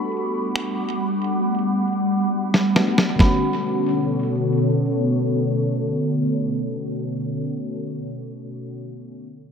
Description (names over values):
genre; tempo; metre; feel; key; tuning
contemporary R&B; 68 BPM; 4/4; straight; B minor; A4 = 444 Hz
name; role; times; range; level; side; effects
warm concert grand piano; melody; 0.0-8.0 s; B5; -32 LUFS; right 1 dB; low-pass filter, analog delay
FM electric piano with soft pad layer; accompaniment; 0.0-9.2 s; D3 to F#4; -25 LUFS; left 1 dB; chorus, phaser, low-pass filter
ethereal airy pad; sustained chords; 0.0-7.5 s; B2 to D6; -23 LUFS; equal; ensemble chorus, built-in reverb, low-pass filter
dusty soul sampler-style drum kit; drums; 0.6-3.4 s; finger snaps, kick drum, snare drum; -19 LUFS; equal; analog delay
room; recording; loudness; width
moderate spring reverb, RT60 2.6 s; echo-heavy mix; -19 LUFS; side -7 dB against mid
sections
0.0-3.2 A section; 3.2-6.7 B section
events
filter sweep 0.0-3.2; drum fill 2.3-3.2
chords
0.0 Gmaj7; 3.2 Bm9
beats
0.55 1.43 2.31 | 3.19 4.08 4.96 5.84